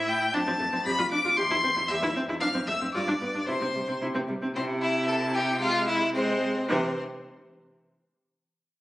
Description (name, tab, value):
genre	quick classical-period movement for string quartet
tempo	113 BPM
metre	2/4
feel	straight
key	C major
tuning	A4 = 442 Hz
part	rich violin	second line	0.0-7.0 s	C4 to D6	-28 LUFS	left 1 dB	none
part	rich viola	accompaniment	0.0-7.0 s	E3 to G4	-30 LUFS	equal	none
part	clear cello	bass	0.0-7.0 s	E2 to C3	-32 LUFS	right 1 dB	none
part	rich violin	melody	0.1-7.0 s	C5 to D7	-32 LUFS	left 3 dB	none
room	wet recital hall reverb, RT60 1.3 s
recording	recorded on a phone in the room, club reverb, compression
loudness	-24 LUFS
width	side -17 dB against mid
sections	0.0-4.6 A section; 4.6-6.7 B section; 6.7-7.8 C section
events	none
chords	0.3 Dm7/F (rootless); 0.9 G7/F (rootless); 1.4 C/E; 2.4 Dm7/F (rootless); 2.9 G; 3.5 N.C.; 4.6 C; 5.6 Caug; 6.7 C